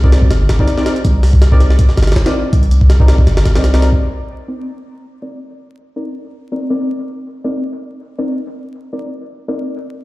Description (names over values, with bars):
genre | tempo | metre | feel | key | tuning
drum and bass, jungle | 162 BPM | 4/4 | swing 54% on 16ths | C minor | A4 = 441 Hz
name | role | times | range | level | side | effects
deep mellow chord stab | stabs | 0.0-10.0 s | C4 to D5 | -21 LUFS | left 1 dB | chorus, dub echo
warm 808-style bass | bass | 0.0-4.0 s | G1 to C2 | -11 LUFS | equal | none
jungle sampler-style drum kit | drums | 0.0-4.0 s | hi-hat, kick drum, snare drum | -13 LUFS | equal | none
room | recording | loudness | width
light reverb | played on a big sound system in a bare room, large studio reverb, vinyl crackle | -11 LUFS | side -19 dB against mid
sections
0.0-4.0 A section; 4.0-10.0 B section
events
drop 0.0-4.0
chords
0.0 Cm9